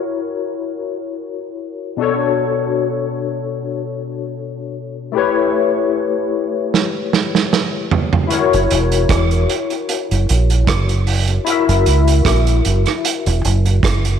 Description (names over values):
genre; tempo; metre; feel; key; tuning
lovers rock reggae; 76 BPM; 4/4; swing 55% on 16ths; unclear; A4 = 442 Hz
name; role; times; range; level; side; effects
barky tine electric piano; accompaniment; 0.0-14.2 s; B2 to E5; -19 LUFS; left 6 dB; overdrive, ensemble chorus
vintage drum kit; drums; 6.7-14.2 s; hi-hat, kick drum, rim click, snare drum, toms; -18 LUFS; right 6 dB; none
deep dub fingered electric bass; bass; 8.5-14.2 s; E1 to C#2; -15 LUFS; right 2 dB; none
room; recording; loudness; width
moderate echo chamber reverb, RT60 2.3 s; 1960s-style stereo with parts hard left and right; -14 LUFS; side -8 dB against mid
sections
0.0-14.2 A section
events
drum fill 6.7-8.3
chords
0.0 F#7; 2.0 Bm7; 5.1 A7; 8.3 F#7